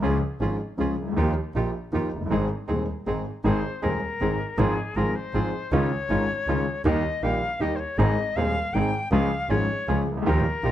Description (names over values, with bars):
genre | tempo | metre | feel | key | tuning
tango | 158 BPM | 3/4 | rubato | Ab major | A4 = 440 Hz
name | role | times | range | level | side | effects
warm concert grand piano | accompaniment | 0.0-10.7 s | Eb1 to Ab4 | -26 LUFS | equal | none
bandoneon | stabs | 0.0-10.7 s | Bb3 to Ab4 | -33 LUFS | right 4 dB | none
clear double bass | bass | 0.0-10.7 s | Gb1 to Eb2 | -28 LUFS | right 1 dB | none
bright reedy silver concert flute | second line | 3.5-10.7 s | Ab4 to G5 | -29 LUFS | left 3 dB | none
room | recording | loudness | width
light reverb | dark, warm production | -23 LUFS | side -12 dB against mid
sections
0.0-3.4 A section; 3.4-10.7 A section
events
none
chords
0.0 Db; 1.2 Ebadd9; 2.3 Ab; 4.6 Fm/Ab; 5.7 Dbadd9; 6.9 Eb; 8.0 Ab; 9.1 Db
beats
| 0.02 0.40 0.78 | 1.16 1.54 1.92 | 2.30 2.68 3.06 | 3.45 3.83 4.20 | 4.58 4.96 5.34 | 5.72 6.09 6.47 | 6.85 7.23 7.61 | 7.99 8.37 8.75 | 9.12 9.50 9.88 | 10.26 10.63